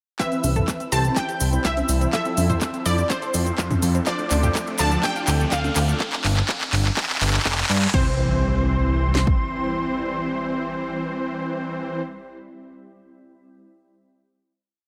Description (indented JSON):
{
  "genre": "progressive house",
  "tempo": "124 BPM",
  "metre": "4/4",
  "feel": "straight",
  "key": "C major",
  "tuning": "A4 = 442 Hz",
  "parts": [
    { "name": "unison pluck", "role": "melody", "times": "0.2-12.0 s", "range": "C5 to A5", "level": "-30 LUFS", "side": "equal", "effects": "sidechain pumping, dub echo" },
    { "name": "airy dreamy lead", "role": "second line", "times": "0.2-12.0 s", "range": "C6 to A6", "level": "-36 LUFS", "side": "equal", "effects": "chorus, sidechain pumping, digital delay" },
    { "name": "shimmering ambient pad", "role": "sustained chords", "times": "0.8-12.0 s", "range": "F3 to B5", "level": "-36 LUFS", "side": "equal", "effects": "chorus, built-in reverb, sidechain pumping" },
    { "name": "analog pluck", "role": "arpeggios", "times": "0.2-12.0 s", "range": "A3 to C5", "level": "-34 LUFS", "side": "equal", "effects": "subtle chorus, sidechain pumping, digital delay" },
    { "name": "supersaw stab", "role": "stabs", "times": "0.2-12.0 s", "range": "E3 to D5", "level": "-31 LUFS", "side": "equal", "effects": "vintage 12-bit sampler grit, sidechain pumping, low-pass filter, digital delay" },
    { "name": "house drum kit", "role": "drums", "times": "0.2-9.4 s", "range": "kick drum, snare drum", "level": "-26 LUFS", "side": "equal", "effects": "overdrive, high-pass filter on kick, high-pass filter on snare" },
    { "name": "house drum kit", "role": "drums", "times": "0.2-8.0 s", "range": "crash cymbal, handclaps, hi-hat", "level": "-29 LUFS", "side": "equal", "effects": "overdrive, high-pass filter on snare, high-pass filter on hats, high-pass filter on cymbals" },
    { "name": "cabasa", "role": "percussion", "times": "0.2-6.0 s", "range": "none", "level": "-34 LUFS", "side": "equal", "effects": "none" },
    { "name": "riser and impact", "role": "sound effects", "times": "2.7-12.1 s", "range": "none", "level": "-35 LUFS", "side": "equal", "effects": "none" },
    { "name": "fat analog bass", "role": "bass", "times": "0.4-9.3 s", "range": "F1 to G2", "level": "-24 LUFS", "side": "equal", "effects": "sidechain pumping" },
    { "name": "electronic congas and toms", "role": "percussion", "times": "0.4-5.7 s", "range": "none", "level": "-30 LUFS", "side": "equal", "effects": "sidechain pumping on perc, sidechain pumping on toms" }
  ],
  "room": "light reverb",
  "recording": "none",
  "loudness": "-22 LUFS",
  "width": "mono",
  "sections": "0.2-7.9 build; 7.9-11.8 final chord",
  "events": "build-up 0.2-7.9; drum fill 0.2-7.9; filter sweep on supersaw synth 0.2-6.0",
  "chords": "0.2 Cmaj7; 2.1 Fmaj7; 4.1 Dm7; 6.0 Fsus2; 7.9 C",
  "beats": "| 0.20 0.68 1.16 1.65 | 2.13 2.62 3.10 3.58 | 4.07 4.55 5.04 5.52 | 6.00 6.49 6.97 7.45 | 7.94 8.42 8.91 9.39 | 9.87 10.36 10.84 11.32"
}